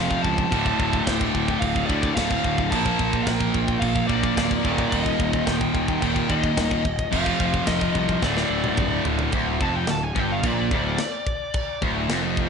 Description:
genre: heavy metal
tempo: 109 BPM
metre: 4/4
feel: straight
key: D phrygian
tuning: A4 = 440 Hz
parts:
  - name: high-gain lead guitar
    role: melody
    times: 0.0-11.8 s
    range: D5 to A5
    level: -28 LUFS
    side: left 1 dB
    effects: distortion
  - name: distorted electric guitar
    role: riff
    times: 0.0-12.5 s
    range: D2 to Bb3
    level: -26 LUFS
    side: left 15 dB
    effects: overdrive
  - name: distorted electric guitar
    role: riff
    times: 0.0-12.5 s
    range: D2 to Bb3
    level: -26 LUFS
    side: right 14 dB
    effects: distortion
  - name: fuzz picked electric bass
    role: bass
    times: 0.0-12.5 s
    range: D1 to Eb2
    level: -28 LUFS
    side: equal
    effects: overdrive
  - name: tight metal drum kit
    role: drums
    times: 0.1-12.5 s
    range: china cymbal, crash cymbal, kick drum, snare drum, toms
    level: -27 LUFS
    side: equal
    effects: none
room: little or no reverb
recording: nothing above 10.9 kHz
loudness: -20 LUFS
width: side -6 dB against mid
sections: 0.0-9.3 A section; 9.3-12.5 B section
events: drum fill 8.2-9.3; lead electric guitar solo 9.3-12.5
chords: 0.0 F; 0.5 Dm; 2.7 Bb; 4.6 Eb; 7.1 F5; 8.2 D5; 9.3 Dm

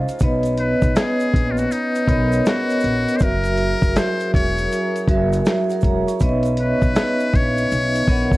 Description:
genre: lo-fi hip hop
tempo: 80 BPM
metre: 4/4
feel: swing 63% on 16ths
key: unclear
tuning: A4 = 444 Hz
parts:
  - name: vibraphone with medium hard mallets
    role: accompaniment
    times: 0.0-8.4 s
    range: Gb3 to Db6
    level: -20 LUFS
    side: equal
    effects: cassette tape
  - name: mellow brass ensemble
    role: sustained chords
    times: 0.0-8.4 s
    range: Gb3 to C5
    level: -31 LUFS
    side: equal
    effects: none
  - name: upright bass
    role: bass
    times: 0.0-8.4 s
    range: Fb1 to Cb2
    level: -23 LUFS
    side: equal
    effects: none
  - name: dusty soul sampler-style drum kit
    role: drums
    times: 0.1-8.4 s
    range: hi-hat, kick drum, snare drum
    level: -20 LUFS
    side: equal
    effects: none
  - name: tube shaker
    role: percussion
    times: 0.1-8.4 s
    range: none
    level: -45 LUFS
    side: right 6 dB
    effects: none
  - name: trumpet with metal mute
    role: melody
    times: 0.6-8.4 s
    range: Eb4 to Db5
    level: -25 LUFS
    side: left 2 dB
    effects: none
room: light reverb, small room ambience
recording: vinyl crackle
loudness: -16 LUFS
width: side -18 dB against mid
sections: 0.0-8.4 A section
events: none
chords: 0.2 Cbmaj9; 3.2 Gb7; 6.2 Cbmaj9

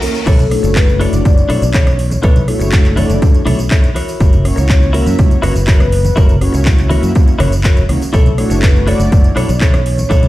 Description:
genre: nu-disco, nu disco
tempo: 122 BPM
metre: 4/4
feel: straight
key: B minor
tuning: A4 = 437 Hz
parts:
  - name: soft octave-layered synth lead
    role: melody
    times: 0.0-10.3 s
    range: F#4 to D5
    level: -21 LUFS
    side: left 2 dB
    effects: chorus, phaser, digital delay
  - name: mellow synth brass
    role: accompaniment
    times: 0.0-9.5 s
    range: A3 to E5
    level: -20 LUFS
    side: equal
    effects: chorus, sidechain pumping, digital delay
  - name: direct-recorded clean electric guitar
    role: riff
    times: 0.0-10.3 s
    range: D4 to C#5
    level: -22 LUFS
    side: left 2 dB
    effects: wide subtle chorus, digital delay
  - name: house drum kit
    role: drums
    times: 0.0-10.3 s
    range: crash cymbal, handclaps, hi-hat, rim click, tambourine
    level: -23 LUFS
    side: equal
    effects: overdrive, high-pass filter on snare, high-pass filter on hats, high-pass filter on perc, high-pass filter on cymbals, high-pass filter on room
  - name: congas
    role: percussion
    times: 0.0-10.3 s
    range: none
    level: -22 LUFS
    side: right 2 dB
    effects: none
  - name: fingered electric bass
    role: bass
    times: 0.3-10.3 s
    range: E1 to F#2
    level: -15 LUFS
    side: equal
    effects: sidechain pumping
  - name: electronic kick drum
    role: drums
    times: 0.3-10.2 s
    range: none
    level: -12 LUFS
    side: equal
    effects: overdrive
room: little or no reverb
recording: played on a big sound system in a bare room, stone room reverb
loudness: -9 LUFS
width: side -16 dB against mid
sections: 0.3-10.3 A section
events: drop 0.3-10.3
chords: 0.3 Bm11; 4.0 F#7; 8.1 Bm11

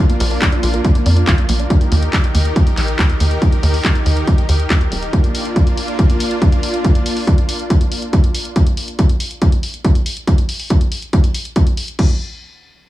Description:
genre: uplifting trance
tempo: 140 BPM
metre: 4/4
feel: straight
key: Bb major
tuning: A4 = 440 Hz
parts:
  - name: supersaw pad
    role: sustained chords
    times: 0.0-8.5 s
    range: Eb3 to Bb4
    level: -22 LUFS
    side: equal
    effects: sidechain pumping
  - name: wide unison pluck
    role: arpeggios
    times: 0.0-1.6 s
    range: Bb3 to D5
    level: -27 LUFS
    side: right 2 dB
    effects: sidechain pumping, dub echo
  - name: punchy analog drum machine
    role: drums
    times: 0.1-12.1 s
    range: crash cymbal, handclaps, hi-hat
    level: -24 LUFS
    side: left 1 dB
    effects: none
  - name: tight sequencer bass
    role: bass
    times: 0.2-5.1 s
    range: Eb1 to F2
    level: -15 LUFS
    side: equal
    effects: sidechain pumping
  - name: electronic kick drum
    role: drums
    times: 0.4-12.1 s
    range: none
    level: -14 LUFS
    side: equal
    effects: none
room: little or no reverb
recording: small room ambience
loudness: -13 LUFS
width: side -15 dB against mid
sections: 0.0-12.0 A section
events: filter sweep on analog synth bass 0.0-5.1; filter sweep on synth pluck 0.0-1.7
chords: 0.0 Bb; 1.7 Eb; 5.1 Bb; 8.6 N.C.

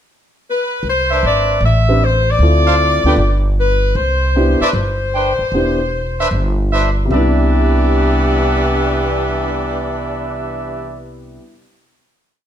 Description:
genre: jazz, big band swing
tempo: 153 BPM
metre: 4/4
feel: swing 66% on 8ths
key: C major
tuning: A4 = 440 Hz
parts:
  - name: edgy saxophone section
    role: melody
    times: 0.5-11.0 s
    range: E3 to E5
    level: -18 LUFS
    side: left 2 dB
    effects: none
  - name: upright bass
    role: bass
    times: 0.8-11.4 s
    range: E1 to D2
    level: -16 LUFS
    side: equal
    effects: none
  - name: clear trumpet section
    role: stabs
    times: 1.1-11.1 s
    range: D4 to G5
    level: -20 LUFS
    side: right 2 dB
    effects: none
  - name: warm concert grand piano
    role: accompaniment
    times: 1.9-11.5 s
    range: C3 to B4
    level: -20 LUFS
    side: equal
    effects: none
room: moderate large studio reverb, RT60 1.1 s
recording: dark, warm production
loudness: -13 LUFS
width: side -10 dB against mid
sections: 0.0-0.8 pickup bar; 0.8-7.1 A section; 7.1-10.3 final chord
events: none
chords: 0.0 N.C.; 0.8 Cmaj9; 1.6 Am11; 2.4 Dm7; 3.2 G; 4.0 Cmaj9

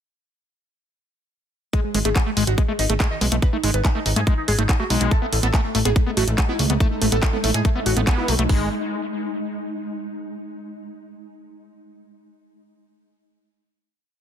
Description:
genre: psychedelic trance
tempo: 142 BPM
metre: 4/4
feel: straight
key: G# phrygian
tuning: A4 = 442 Hz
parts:
  - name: overdriven synth lead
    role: melody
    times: 1.7-8.7 s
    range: G#3 to B4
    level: -26 LUFS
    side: right 1 dB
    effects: phaser, sidechain pumping, tape echo
  - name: screaming distorted acid line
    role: riff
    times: 1.7-8.7 s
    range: G#3 to B3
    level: -27 LUFS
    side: left 1 dB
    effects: distortion, chorus, auto-pan, vintage 12-bit sampler grit, sidechain pumping, tape echo
  - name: garage drum kit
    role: drums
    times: 1.7-8.6 s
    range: hi-hat, kick drum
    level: -20 LUFS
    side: equal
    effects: studio ambience
  - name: garage drum kit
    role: drums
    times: 1.7-8.5 s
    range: handclaps, hi-hat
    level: -26 LUFS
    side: equal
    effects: studio ambience
  - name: plucky analog bass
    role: bass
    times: 1.9-8.7 s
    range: G#1 to A2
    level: -22 LUFS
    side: equal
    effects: none
  - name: swarming drone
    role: sustained chords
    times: 6.1-8.5 s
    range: G#3 to D#4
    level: -29 LUFS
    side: equal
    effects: built-in reverb, sidechain pumping
room: digital ambience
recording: dense, heavily limited modern master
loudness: -18 LUFS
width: side -9 dB against mid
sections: 1.7-8.5 groove; 8.5-10.2 final chord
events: none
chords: 1.7 G#5; 5.1 Amaj7(b5, no3); 8.5 G#5

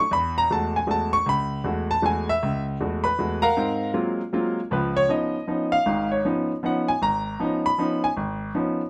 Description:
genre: jazz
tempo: 157 BPM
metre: 3/4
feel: swing 64% on 8ths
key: Db mixolydian from 4.7 s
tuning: A4 = 440 Hz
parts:
  - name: clear concert grand piano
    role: solo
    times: 0.0-8.8 s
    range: Ab1 to C#6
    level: -24 LUFS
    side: equal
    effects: none
room: wet studio ambience, RT60 0.5 s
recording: none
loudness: -24 LUFS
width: mono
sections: 0.0-4.7 A section; 4.7-8.9 A section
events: none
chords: 0.1 F#madd9; 3.6 G#13; 4.7 Db9

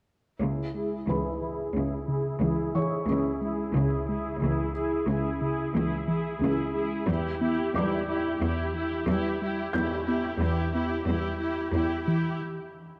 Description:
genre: cinematic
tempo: 90 BPM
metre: 5/4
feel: straight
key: C# phrygian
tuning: A4 = 440 Hz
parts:
  - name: rich symphonic viola section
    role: accompaniment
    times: 0.4-12.4 s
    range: E4 to G#4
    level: -33 LUFS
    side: equal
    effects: low-pass filter
  - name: harp-like synth pluck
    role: arpeggios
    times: 0.4-12.3 s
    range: C#3 to E4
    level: -34 LUFS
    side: equal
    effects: chorus, low-pass filter, digital delay
  - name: rich symphonic cello section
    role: bass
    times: 0.4-12.3 s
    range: C#2 to E2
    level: -33 LUFS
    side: equal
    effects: none
  - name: felt-muted upright piano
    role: texture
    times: 1.1-13.0 s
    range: B4 to G6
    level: -41 LUFS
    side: equal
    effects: digital delay
room: moderate scoring stage reverb, RT60 2.1 s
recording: none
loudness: -28 LUFS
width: mono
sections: 0.4-13.0 A section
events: filter sweep 0.4-13.0; break 12.4-13.0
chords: 0.4 C#m; 7.1 Em

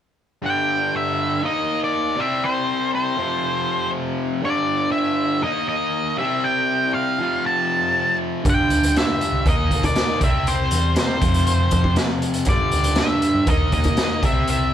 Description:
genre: classic rock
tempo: 120 BPM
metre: 4/4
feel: straight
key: unclear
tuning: A4 = 440 Hz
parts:
  - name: distorted electric guitar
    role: riff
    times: 0.4-14.7 s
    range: F2 to Eb4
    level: -23 LUFS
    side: equal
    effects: distortion
  - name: octave-fuzz lead guitar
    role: melody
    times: 0.5-14.7 s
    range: C5 to A5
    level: -22 LUFS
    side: left 1 dB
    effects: distortion
  - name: picked electric bass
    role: bass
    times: 8.4-14.7 s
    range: G1 to G2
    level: -22 LUFS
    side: equal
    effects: none
  - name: raw garage drum kit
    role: drums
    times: 8.5-14.6 s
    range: hi-hat, kick drum, snare drum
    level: -21 LUFS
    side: equal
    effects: none
room: moderate stone room reverb, RT60 1.0 s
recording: band playing live in one room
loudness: -18 LUFS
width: side -10 dB against mid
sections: 0.4-14.7 A section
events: none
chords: 0.4 G5; 1.4 Eb5; 2.2 C5; 3.2 F5; 4.4 G5; 5.4 Eb5; 6.2 C5; 7.2 F; 8.5 G5; 9.5 Eb5; 10.2 C; 11.2 F5; 12.5 G5; 13.5 Eb5

